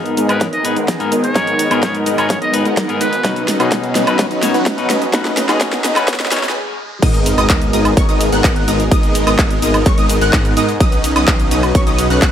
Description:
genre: EDM, festival progressive house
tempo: 127 BPM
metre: 4/4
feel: straight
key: G# minor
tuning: A4 = 440 Hz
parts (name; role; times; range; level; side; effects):
- clean electric guitar; accompaniment; 0.0-6.4 s; G#2 to C#5; -21 LUFS; left 4 dB; sidechain pumping, digital delay
- supersaw pad; sustained chords; 0.0-12.3 s; B2 to A#4; -24 LUFS; equal; phaser, sidechain pumping
- supersaw chords; riff; 0.0-12.3 s; F#3 to G#5; -18 LUFS; equal; vintage 12-bit sampler grit, sidechain pumping, low-pass filter, digital delay
- wide detuned saw bass; bass; 0.0-12.3 s; G#1 to G#2; -22 LUFS; equal; chorus, sidechain pumping, high-pass filter
- riser, swell and sub drop; sound effects; 1.3-8.9 s; none; -32 LUFS; equal; none
- big-room dance drum kit; drums; 0.1-12.3 s; crash cymbal, handclaps, hi-hat, shaker, snare drum, woodblock; -20 LUFS; equal; overdrive
- trumpet with metal mute; melody; 0.3-3.3 s; B4 to D#5; -21 LUFS; equal; digital delay
- electronic kick drum; drums; 0.4-12.3 s; none; -15 LUFS; equal; overdrive, high-pass filter on kick
- wide unison pluck; arpeggios; 7.0-12.3 s; C#6 to F#6; -22 LUFS; equal; ensemble chorus, sidechain pumping, digital delay
room: light reverb, digital ambience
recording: high-pass filter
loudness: -12 LUFS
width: side -9 dB against mid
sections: 0.0-7.0 A section; 7.0-12.3 B section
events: build-up 0.0-7.0; drum fill 0.0-6.6; filter sweep on supersaw synth 0.0-7.0; swell 6.1-7.0; break 6.6-7.0; drop 7.0-12.3; impact 7.0-8.9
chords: 0.0 G#madd9; 3.2 Badd9; 7.0 G#madd9; 10.8 Badd9

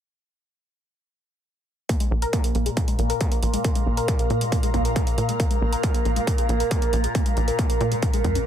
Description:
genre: driving peak-time techno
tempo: 137 BPM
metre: 4/4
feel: straight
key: unclear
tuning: A4 = 440 Hz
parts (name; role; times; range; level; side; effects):
- tight sequenced synth; riff; 1.9-8.4 s; Ab3 to Bb4; -29 LUFS; equal; chorus, sidechain pumping, ping-pong delay
- overtone-sweeping drone; drone; 2.2-8.5 s; Bb2; -31 LUFS; left 1 dB; chorus, built-in reverb, phaser, sidechain pumping
- electronic hi-hat; drums; 1.9-8.4 s; none; -34 LUFS; right 2 dB; overdrive, sidechain pumping on hats
- electronic kick drum; drums; 1.9-8.3 s; none; -23 LUFS; equal; distortion, overdrive
- ethereal airy pad; texture; 2.7-8.5 s; Bb4 to Bb5; -28 LUFS; right 3 dB; ensemble chorus, built-in reverb, phaser, sidechain pumping
- tight sequencer bass; bass; 2.1-8.4 s; Bb1 to Bb2; -23 LUFS; equal; sidechain pumping
room: digital ambience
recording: none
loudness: -20 LUFS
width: side -10 dB against mid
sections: 1.9-8.5 A section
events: none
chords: 1.9 Bb5

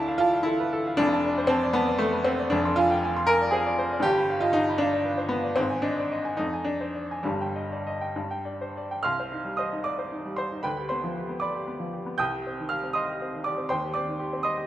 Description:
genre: classical, romantic character piece for solo piano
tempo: 64-83 BPM (dotted quarters)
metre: 6/8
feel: rubato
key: C minor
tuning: A4 = 438 Hz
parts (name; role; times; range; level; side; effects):
- clear upright piano; solo; 0.0-14.7 s; F1 to G6; -24 LUFS; equal; none
room: moderate recital hall reverb, RT60 1.4 s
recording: none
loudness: -24 LUFS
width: side -13 dB against mid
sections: 0.0-9.0 A section; 9.0-14.7 B section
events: none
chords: 0.0 Dm; 1.0 Dm/F; 2.5 Dm7b5/F; 4.0 G7; 5.6 Ab5; 6.4 Dm7b5/F; 7.3 Ebmaj7/G; 8.2 G5; 9.0 Cm; 10.6 G7/D; 12.2 Cm; 13.7 Cm/Eb

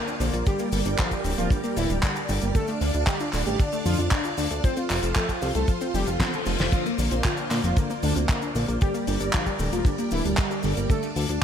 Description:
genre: italo disco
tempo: 115 BPM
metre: 4/4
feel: straight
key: unclear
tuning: A4 = 442 Hz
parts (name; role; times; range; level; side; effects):
- analog synth brass; melody; 0.0-11.4 s; D3 to C5; -30 LUFS; equal; chorus, cassette tape, tape echo
- string machine, full ensemble; sustained chords; 0.0-11.4 s; G3 to A5; -32 LUFS; right 1 dB; phaser, ensemble chorus
- wide unison pluck; arpeggios; 0.0-11.4 s; D3 to A4; -32 LUFS; left 3 dB; ping-pong delay
- damped 70s drum kit; drums; 0.1-11.4 s; cabasa, crash cymbal, handclaps, hi-hat, snare drum; -30 LUFS; left 1 dB; studio reverb, gated reverb
- chorused synth bass; bass; 0.2-11.4 s; D1 to Bb2; -27 LUFS; equal; none
- kick drum; drums; 0.5-11.0 s; none; -23 LUFS; equal; studio reverb
- reverse cymbal; sound effects; 5.9-6.7 s; none; -36 LUFS; left 4 dB; none
room: little or no reverb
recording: none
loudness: -22 LUFS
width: side -8 dB against mid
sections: 0.0-11.4 A section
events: reverse cymbal 5.9-6.7; drum fill 6.2-6.7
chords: 0.5 Gm; 2.6 Dm; 4.6 F; 6.7 Bbadd9; 8.8 Gm; 10.9 Dm

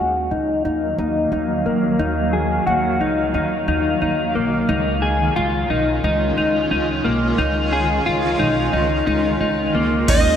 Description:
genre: dream pop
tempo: 89 BPM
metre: 4/4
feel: straight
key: unclear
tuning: A4 = 440 Hz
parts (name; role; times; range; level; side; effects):
- granular cloud pad; sustained chords; 0.0-10.4 s; Eb3 to F5; -23 LUFS; right 1 dB; built-in reverb, tremolo, low-pass filter
- clean electric guitar; arpeggios; 0.0-10.4 s; Bb3 to Ab4; -19 LUFS; left 2 dB; analog chorus, low-pass filter, digital delay
- upright bass; bass; 0.0-10.4 s; Cb2 to Eb2; -24 LUFS; right 1 dB; none
- overdriven slide guitar; melody; 10.1-10.4 s; Eb5; -18 LUFS; right 3 dB; lush chorus
- booming analog drum machine; drums; 10.1-10.3 s; crash cymbal, hi-hat, kick drum; -16 LUFS; right 1 dB; none
room: wet plate reverb, RT60 3.5 s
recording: bright 1980s-style digital production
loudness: -17 LUFS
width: side -8 dB against mid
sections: 0.0-10.1 A section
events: filter sweep 0.0-10.1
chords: 0.0 Ebmadd9; 4.7 Dbadd9

